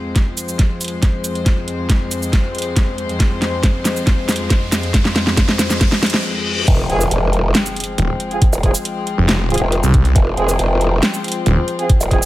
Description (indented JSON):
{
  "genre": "heavy wobble dubstep",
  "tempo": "138 BPM",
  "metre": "4/4",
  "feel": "half-time",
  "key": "F minor",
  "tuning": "A4 = 436 Hz",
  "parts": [
    { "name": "warm studio string section", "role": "sustained chords", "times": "0.0-12.3 s", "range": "F2 to C5", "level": "-23 LUFS", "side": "left 2 dB", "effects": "sidechain pumping" },
    { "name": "riser, reverse cymbal and impact", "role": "sound effects", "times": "0.0-8.4 s", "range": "none", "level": "-27 LUFS", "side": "left 1 dB", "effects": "none" },
    { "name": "dubstep drum kit", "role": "drums", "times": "0.2-12.3 s", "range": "crash cymbal, hi-hat, shaker, snare drum", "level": "-19 LUFS", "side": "equal", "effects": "none" },
    { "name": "electronic kick drum", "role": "drums", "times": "0.2-12.2 s", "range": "none", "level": "-14 LUFS", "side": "equal", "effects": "none" },
    { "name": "growl bass", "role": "bass", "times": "6.7-12.2 s", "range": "Eb1 to F1", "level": "-16 LUFS", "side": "equal", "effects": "chorus, overdrive" },
    { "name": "mellow brass ensemble", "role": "stabs", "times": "6.9-12.2 s", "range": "C4 to Ab4", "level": "-23 LUFS", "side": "right 2 dB", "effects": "tape echo" },
    { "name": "snarling distorted saw bass", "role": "bass", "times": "8.0-11.6 s", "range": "Eb1 to C2", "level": "-15 LUFS", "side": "equal", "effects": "distortion, overdrive" }
  ],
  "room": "light reverb",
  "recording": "none",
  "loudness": "-14 LUFS",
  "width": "side -16 dB against mid",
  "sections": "0.0-6.7 A section; 6.7-12.3 B section",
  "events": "build-up 0.0-6.7; drum fill 0.0-6.2; riser 0.0-6.2; reverse cymbal 5.8-6.7; break 6.2-6.7; drop 6.7-12.3; impact 6.7-8.4",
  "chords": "0.0 Fm",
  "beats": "0.16 0.59 1.03 | 1.46 1.90 2.33 2.77 | 3.20 3.63 4.07 4.50 | 4.94 5.37 5.81 6.24 | 6.68 7.11 7.55 7.98 | 8.42 8.85 9.29 9.72 | 10.16 10.59 11.03 11.46 | 11.89"
}